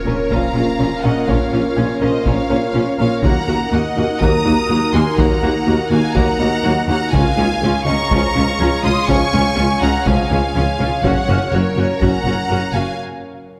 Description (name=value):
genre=cinematic, hybrid orchestral and electronic film score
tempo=123 BPM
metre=4/4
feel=straight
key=unclear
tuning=A4 = 440 Hz
part: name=warm symphonic violin section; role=melody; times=0.0-13.0 s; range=Db5 to Eb6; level=-26 LUFS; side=equal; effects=none
part: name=warm symphonic violin section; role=second line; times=0.0-13.0 s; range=Bb4 to C6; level=-26 LUFS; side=equal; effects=none
part: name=airy breathy pad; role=sustained chords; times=0.0-13.0 s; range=Gb3 to F5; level=-25 LUFS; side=equal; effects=chorus
part: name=impact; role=sound effects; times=0.0-1.3 s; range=none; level=-36 LUFS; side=equal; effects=none
part: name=dark baby grand piano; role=texture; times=0.0-13.6 s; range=Db4 to Ab6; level=-34 LUFS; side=equal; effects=none
part: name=rich symphonic viola section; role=accompaniment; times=0.1-12.8 s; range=Bb3 to Gb4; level=-26 LUFS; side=equal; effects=none
part: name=soft round pluck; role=arpeggios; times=0.1-12.9 s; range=Db3 to Bb4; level=-29 LUFS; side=equal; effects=none
part: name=clear symphonic cello section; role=bass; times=0.1-12.8 s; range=Db2 to Bb2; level=-26 LUFS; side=equal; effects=none
part: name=warm symphonic double bass section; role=bass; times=0.1-12.8 s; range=Gb1 to Eb2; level=-25 LUFS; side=equal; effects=none
part: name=warm tuba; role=bass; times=0.1-12.8 s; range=Gb1 to Eb2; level=-26 LUFS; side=equal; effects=none
part: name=warm French horn section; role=sustained chords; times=0.3-12.2 s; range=F3 to Db4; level=-30 LUFS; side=equal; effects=none
part: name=taiko ensemble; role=drums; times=0.3-12.5 s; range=none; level=-25 LUFS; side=equal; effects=none
room=wet scoring stage reverb, RT60 1.8 s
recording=none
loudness=-16 LUFS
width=mono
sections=0.0-13.6 A section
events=impact 0.0-1.3; break 13.0-13.6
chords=0.0 Bbm; 3.2 Ebm; 7.1 Db; 11.0 Gb